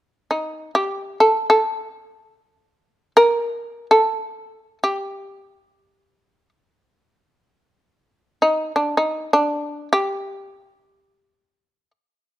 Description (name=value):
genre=japanese traditional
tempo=free time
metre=none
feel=none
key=G hirajoshi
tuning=A4 = 441 Hz
part: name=shamisen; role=melody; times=0.3-11.9 s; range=D4 to Bb4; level=-17 LUFS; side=equal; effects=none
room=light reverb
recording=close, detailed microphones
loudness=-18 LUFS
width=side -14 dB against mid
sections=0.0-12.4 A section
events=none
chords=none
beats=free time